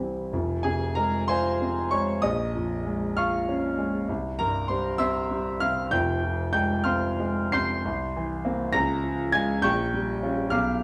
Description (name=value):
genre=classical, romantic character piece for solo piano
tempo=54-69 BPM (dotted quarters)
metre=6/8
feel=rubato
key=F minor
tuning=A4 = 436 Hz
part: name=warm grand piano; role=solo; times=0.0-10.8 s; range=F1 to C7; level=-26 LUFS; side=equal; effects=none
room=wet large studio reverb, RT60 1.2 s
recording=heard from further back in the room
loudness=-26 LUFS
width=mono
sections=0.3-10.8 A section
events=none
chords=0.3 Fm; 2.2 Bbm7; 4.1 C; 5.9 Fm; 7.8 C7; 8.7 Db; 9.6 Gm7b5/Bb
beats=| 0.33 1.29 | 2.24 3.18 | 4.08 5.00 | 5.93 6.85 | 7.84 8.74 | 9.64 10.52